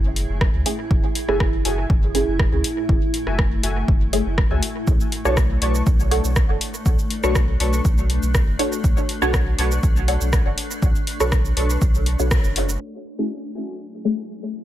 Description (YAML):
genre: dub techno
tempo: 121 BPM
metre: 4/4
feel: straight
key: F# minor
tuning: A4 = 440 Hz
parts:
  - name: granular cloud pad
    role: sustained chords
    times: 0.0-14.6 s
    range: A2 to G#4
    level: -30 LUFS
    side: equal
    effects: built-in reverb, sidechain pumping
  - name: filtered dub chord stab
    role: stabs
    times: 0.0-14.3 s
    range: A3 to C#5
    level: -25 LUFS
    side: equal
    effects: phaser, sidechain pumping, dub echo
  - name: warm sub bass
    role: bass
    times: 0.0-12.8 s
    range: F#1 to C#2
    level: -22 LUFS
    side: equal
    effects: sidechain pumping
  - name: punchy analog drum machine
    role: drums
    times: 0.2-14.6 s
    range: hi-hat, rim click, shaker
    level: -27 LUFS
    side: equal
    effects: dub echo
  - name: electronic kick drum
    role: drums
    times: 0.4-12.4 s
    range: none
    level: -20 LUFS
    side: equal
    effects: none
  - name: warbly lo-fi synth keys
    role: riff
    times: 1.3-13.8 s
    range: F#4 to C#6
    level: -33 LUFS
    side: left 2 dB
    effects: chorus, sidechain pumping, dub echo
room: little or no reverb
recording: low-pass filter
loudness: -18 LUFS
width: side -13 dB against mid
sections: 0.0-12.8 A section; 12.8-14.6 B section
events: filter sweep on synth stab 0.0-12.8; band accent 12.3; filter sweep 12.8-14.6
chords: 0.0 F#m9; 4.9 Bm9; 12.8 F#m9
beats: 0.41 | 0.91 1.40 1.90 2.40 | 2.89 3.39 3.88 4.38 | 4.87 5.37 5.87 6.36 | 6.86 7.35 7.85 8.35 | 8.84 9.34 9.83 10.33 | 10.82 11.32 11.82 12.31 | 12.81 13.30 13.80 14.30